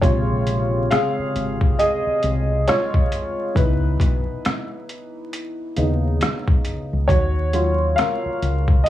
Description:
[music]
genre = lo-fi hip hop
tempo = 68 BPM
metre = 4/4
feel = swing 61% on 16ths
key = unclear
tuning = A4 = 439 Hz
[part]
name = warm upright piano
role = accompaniment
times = 0.0-8.9 s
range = C3 to F5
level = -22 LUFS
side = equal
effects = cassette tape, low-pass filter, plate reverb
[part]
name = deep dub fingered electric bass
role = bass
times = 0.0-8.8 s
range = Ab1 to Eb2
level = -21 LUFS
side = left 1 dB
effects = none
[part]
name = trip hop sampler-style drum kit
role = drums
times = 0.0-8.9 s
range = hi-hat, kick drum, rim click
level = -20 LUFS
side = equal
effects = none
[sound]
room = light reverb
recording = vinyl crackle, small room ambience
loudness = -18 LUFS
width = side -13 dB against mid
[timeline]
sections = 0.0-8.9 A section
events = upright piano solo 0.0-8.9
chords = 0.0 Bbm7; 3.6 Dbm7; 7.1 Ebm7

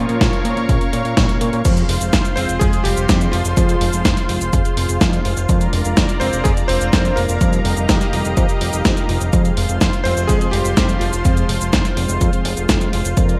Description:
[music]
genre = italo disco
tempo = 125 BPM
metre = 4/4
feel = straight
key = F minor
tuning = A4 = 440 Hz
[part]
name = bright electric grand piano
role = melody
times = 0.0-11.9 s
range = F3 to C5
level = -25 LUFS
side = equal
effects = digital delay
[part]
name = warm analog pad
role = sustained chords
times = 0.0-13.4 s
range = F4 to Db6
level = -27 LUFS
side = equal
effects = chorus
[part]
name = mellow synth brass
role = stabs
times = 0.0-13.4 s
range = Bb2 to Db5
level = -28 LUFS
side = equal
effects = chorus
[part]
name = fat analog bass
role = bass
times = 0.0-13.4 s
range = F1 to Bb2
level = -23 LUFS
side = equal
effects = tube saturation
[part]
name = clean 12-bit digital drum machine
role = drums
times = 0.1-13.4 s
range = cabasa, crash cymbal, hi-hat, snare drum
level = -23 LUFS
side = equal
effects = gated reverb
[part]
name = electronic kick drum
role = drums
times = 0.2-13.3 s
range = none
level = -21 LUFS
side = equal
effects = none
[sound]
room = light reverb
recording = bright 1980s-style digital production, vinyl crackle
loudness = -17 LUFS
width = mono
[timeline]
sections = 0.0-1.7 A section; 1.7-13.4 B section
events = filter sweep on analog polysynth 0.0-1.7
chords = 0.0 Bbm; 1.7 Fm; 5.5 Bb7/F; 7.4 Ebadd9/F; 9.3 Fm

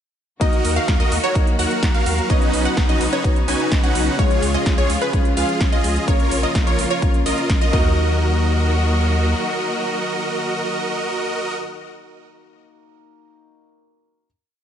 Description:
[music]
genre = EDM, festival progressive house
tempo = 127 BPM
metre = 4/4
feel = straight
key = Eb minor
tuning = A4 = 440 Hz
[part]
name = warm concert grand piano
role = accompaniment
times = 0.4-14.3 s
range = Ab3 to Eb5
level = -27 LUFS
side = left 3 dB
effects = wide subtle chorus, sidechain pumping, ping-pong delay
[part]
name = clear studio string section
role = sustained chords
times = 0.4-11.5 s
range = C#3 to Gb4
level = -28 LUFS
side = left 1 dB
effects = sidechain pumping
[part]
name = wide unison pluck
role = arpeggios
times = 0.4-11.5 s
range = Cb5 to Ab5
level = -26 LUFS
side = equal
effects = analog chorus, sidechain pumping, ping-pong delay
[part]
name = supersaw chords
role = riff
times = 0.4-11.5 s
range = C#4 to Ab5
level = -23 LUFS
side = right 1 dB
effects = sidechain pumping, ping-pong delay
[part]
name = saturated sub bass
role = bass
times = 0.4-9.3 s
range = Bb1 to Eb2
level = -22 LUFS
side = equal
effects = sidechain pumping
[part]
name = big-room dance drum kit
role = drums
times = 0.4-7.7 s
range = hi-hat, ride cymbal, snare drum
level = -28 LUFS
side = right 1 dB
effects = overdrive
[part]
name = electronic kick drum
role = drums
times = 0.4-7.8 s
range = none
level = -18 LUFS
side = equal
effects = none
[sound]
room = moderate plate reverb, RT60 1.8 s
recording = dreamy mix soaked in reverb, nothing above 10.9 kHz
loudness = -16 LUFS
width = side -9 dB against mid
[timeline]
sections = 0.4-8.0 drop; 8.0-11.7 final hit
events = drop 0.4-8.0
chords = 0.4 Ebm; 2.3 Badd9; 4.2 Db; 6.1 Bbm; 7.7 Ebm

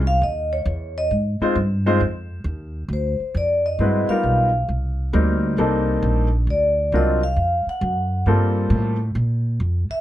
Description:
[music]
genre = jazz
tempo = 134 BPM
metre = 4/4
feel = swing 67% on 8ths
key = G minor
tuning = A4 = 439 Hz
[part]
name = upright bass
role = bass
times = 0.0-9.9 s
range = Bb1 to Bb2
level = -21 LUFS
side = equal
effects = none
[part]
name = vibraphone with soft mallets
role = melody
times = 0.1-10.0 s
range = C5 to F#5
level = -22 LUFS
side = equal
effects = none
[part]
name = warm baby grand piano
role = accompaniment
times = 1.4-9.0 s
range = F#3 to C5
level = -21 LUFS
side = left 1 dB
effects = none
[sound]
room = light reverb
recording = close, detailed microphones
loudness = -18 LUFS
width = side -13 dB against mid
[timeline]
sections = 0.0-10.0 A section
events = none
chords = 0.2 C#madd9/D#; 1.1 Ab6; 2.9 Dm7; 3.8 G7alt; 4.7 Cm7; 6.5 D7alt; 8.3 Gm11

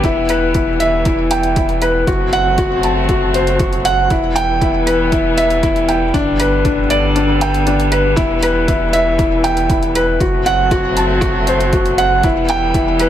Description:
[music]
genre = piano and strings electronica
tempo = 118 BPM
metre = 4/4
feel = straight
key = E minor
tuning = A4 = 438 Hz
[part]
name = dark string quartet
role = sustained chords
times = 0.0-13.1 s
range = D3 to C4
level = -21 LUFS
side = left 1 dB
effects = sidechain pumping
[part]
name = felt-muted upright piano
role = riff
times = 0.0-13.1 s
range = D4 to A5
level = -14 LUFS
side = equal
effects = ping-pong delay
[part]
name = warm sub bass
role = bass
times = 0.0-13.1 s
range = E1 to G1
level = -21 LUFS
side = equal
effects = sidechain pumping
[part]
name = electronic hi-hat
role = drums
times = 0.0-13.1 s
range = none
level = -27 LUFS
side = right 1 dB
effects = overdrive, studio reverb
[part]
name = electronic kick drum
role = drums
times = 0.0-12.8 s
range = none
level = -20 LUFS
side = equal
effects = overdrive, studio reverb
[sound]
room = moderate echo chamber reverb, RT60 2.2 s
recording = none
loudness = -12 LUFS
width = side -11 dB against mid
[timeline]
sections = 0.0-13.1 A section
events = kick drops out 7.2-8.2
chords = 0.0 Em; 2.1 F#dim; 4.1 Em; 6.1 G; 8.2 Em; 10.2 F#dim; 12.2 Em

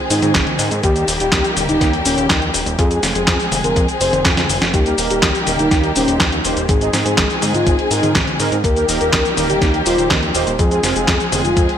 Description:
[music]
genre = italo disco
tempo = 123 BPM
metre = 4/4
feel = straight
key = unclear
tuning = A4 = 440 Hz
[part]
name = warm symphonic string section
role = sustained chords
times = 0.0-11.8 s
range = Eb3 to Ab4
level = -22 LUFS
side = left 2 dB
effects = none
[part]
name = soft octave-layered synth lead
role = melody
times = 0.1-11.7 s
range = Db4 to C5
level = -20 LUFS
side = left 1 dB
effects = chorus, tremolo, ping-pong delay
[part]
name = fat analog bass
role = bass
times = 0.1-11.7 s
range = Eb1 to Ab2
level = -22 LUFS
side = equal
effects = none
[part]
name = clean 12-bit digital drum machine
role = drums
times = 0.1-11.8 s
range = cabasa, handclaps, hi-hat, snare drum, toms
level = -18 LUFS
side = equal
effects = gated reverb
[part]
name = electronic kick drum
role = drums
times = 0.3-11.7 s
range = none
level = -20 LUFS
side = equal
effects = none
[part]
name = analog synth brass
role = stabs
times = 4.9-11.8 s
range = Ab3 to C5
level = -22 LUFS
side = right 6 dB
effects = chorus
[sound]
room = light reverb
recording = none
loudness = -13 LUFS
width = side -9 dB against mid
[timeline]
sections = 0.0-11.8 A section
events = drum fill 4.4-4.7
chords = 0.0 Ab; 0.8 Eb; 2.8 Fm; 4.7 Eb; 6.7 Ab; 8.6 Eb; 10.6 Fm

